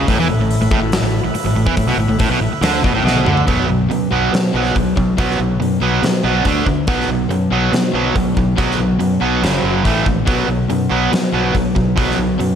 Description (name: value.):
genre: hard rock.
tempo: 141 BPM.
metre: 4/4.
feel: straight.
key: B minor from 3.5 s.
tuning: A4 = 439 Hz.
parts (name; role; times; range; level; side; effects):
overdriven tonewheel organ; sustained chords; 0.0-3.4 s; A3 to B4; -27 LUFS; equal; slow rotary speaker.
overdriven semi-hollow guitar; riff; 0.0-12.6 s; F#2 to D4; -18 LUFS; right 8 dB; none.
sludgy distorted guitar; riff; 0.0-12.6 s; F#2 to D4; -20 LUFS; left 9 dB; overdrive.
fingered electric bass; bass; 0.0-12.6 s; F#1 to B2; -21 LUFS; equal; none.
huge arena drum kit; drums; 0.1-12.5 s; hi-hat, kick drum, snare drum, toms; -20 LUFS; equal; none.
room: light reverb, small room ambience.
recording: none.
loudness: -14 LUFS.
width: side -8 dB against mid.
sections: 0.0-3.5 A section; 3.5-12.6 B section.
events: drum fill 3.0-3.5.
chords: 0.1 A5; 3.5 B5; 6.5 D5; 6.9 B5; 9.4 F#5; 9.9 A5; 10.3 B5.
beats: | 0.08 0.50 0.93 1.35 | 1.77 2.20 2.62 3.05 | 3.47 3.90 4.32 4.75 | 5.17 5.60 6.03 6.45 | 6.88 7.30 7.73 8.15 | 8.58 9.00 9.43 9.85 | 10.28 10.70 11.13 11.55 | 11.98 12.40.